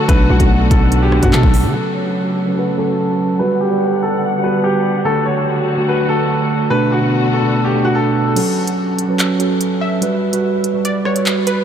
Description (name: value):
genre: hip hop, drill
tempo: 145 BPM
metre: 4/4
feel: half-time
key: F# phrygian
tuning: A4 = 440 Hz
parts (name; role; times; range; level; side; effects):
- bright upright piano; melody; 0.0-8.3 s; F#4 to C#5; -20 LUFS; left 1 dB; low-pass filter, tape echo
- glassy wavetable pluck; second line; 0.0-0.1, 9.8-11.6 s; B4 to E5; -25 LUFS; left 1 dB; chorus, tape echo
- mellow tine electric piano; accompaniment; 0.0-11.6 s; B2 to B4; -17 LUFS; right 2 dB; wide subtle chorus, low-pass filter
- dark symphonic string section; sustained chords; 0.0-8.3 s; C#3 to F#5; -23 LUFS; left 2 dB; low-pass filter
- growling 808-style bass; bass; 0.1-1.7 s; B1 to D3; -14 LUFS; equal; none
- drill drum kit; drums; 0.1-1.6, 8.4-11.6 s; crash cymbal, handclaps, hi-hat, kick drum, rim click; -19 LUFS; equal; none
room: moderate huge ambient reverb, RT60 9.2 s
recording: dreamy mix soaked in reverb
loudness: -13 LUFS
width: side -9 dB against mid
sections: 0.0-1.7 A section; 1.7-8.4 B section; 8.4-11.6 C section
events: filter sweep 1.7-8.4; kick muted 8.4-11.6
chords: 0.1 Bm7; 1.7 F#m; 3.4 Gmaj7; 5.1 D; 6.7 Bm7; 8.4 F#m; 10.0 Gmaj7